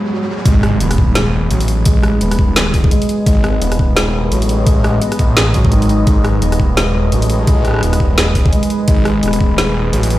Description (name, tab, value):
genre	half-time drum and bass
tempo	171 BPM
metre	4/4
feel	swing 58% on 16ths, half-time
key	G# phrygian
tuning	A4 = 440 Hz
part	deep dark ambient pad	sustained chords	0.0-10.2 s	G#3 to D#5	-21 LUFS	equal	chorus, built-in reverb, sidechain pumping
part	felt-muted upright piano	arpeggios	0.0-10.2 s	D#3 to G#4	-20 LUFS	right 1 dB	dub echo
part	riser and impact	sound effects	0.0-1.9 s	none	-21 LUFS	right 1 dB	none
part	phased detuned saw bass	bass	0.5-10.2 s	D#1 to A1	-15 LUFS	equal	phaser
part	drum and bass drum kit	drums	0.5-10.2 s	hi-hat, rim click, snare drum	-19 LUFS	equal	overdrive
part	electronic kick drum	drums	0.5-9.5 s	none	-13 LUFS	equal	overdrive
room	light reverb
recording	played on a big sound system in a bare room, stone room reverb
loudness	-11 LUFS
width	side -15 dB against mid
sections	0.5-10.2 A section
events	riser 0.0-0.5; drop 0.5-10.2; impact 0.5-1.9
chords	0.5 G#m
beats	0.11 | 0.46 0.81 1.16 1.51 | 1.86 2.21 2.56 2.91 | 3.26 3.61 3.96 4.32 | 4.67 5.02 5.37 5.72 | 6.07 6.42 6.77 7.12 | 7.47 7.83 8.18 8.53 | 8.88 9.23 9.58 9.93